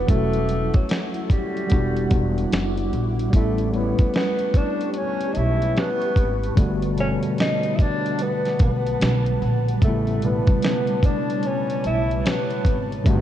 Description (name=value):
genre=lo-fi hip hop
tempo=74 BPM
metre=4/4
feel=swing 62% on 16ths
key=unclear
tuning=A4 = 440 Hz
part: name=mellow tenor saxophone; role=melody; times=0.0-12.9 s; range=F#3 to E4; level=-26 LUFS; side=equal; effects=low-pass filter, tape echo
part: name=mellow tine electric piano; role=accompaniment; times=0.0-13.2 s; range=B2 to C#5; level=-26 LUFS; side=left 1 dB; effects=overdrive, medium stereo tremolo, cassette tape, low-pass filter
part: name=granular cloud pad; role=sustained chords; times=0.0-13.2 s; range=G3 to D6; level=-31 LUFS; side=right 1 dB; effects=built-in reverb, low-pass filter
part: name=upright bass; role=bass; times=0.0-13.2 s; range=E1 to B1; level=-24 LUFS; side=equal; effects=none
part: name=dusty soul sampler-style drum kit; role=drums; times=0.1-13.2 s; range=hi-hat, kick drum, snare drum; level=-20 LUFS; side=equal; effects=vintage 12-bit sampler grit
room=moderate plate reverb, RT60 2.9 s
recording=dreamy mix soaked in reverb, cassette tape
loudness=-19 LUFS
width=side -11 dB against mid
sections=0.0-3.3 A section; 3.3-13.2 B section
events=none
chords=0.1 F#m7/E; 1.7 Em9; 3.3 A9; 6.6 Gmaj9; 9.8 A9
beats=| 0.09 0.90 1.71 2.52 | 3.33 4.14 4.95 5.76 | 6.57 7.38 8.19 9.01 | 9.82 10.63 11.44 12.25 | 13.06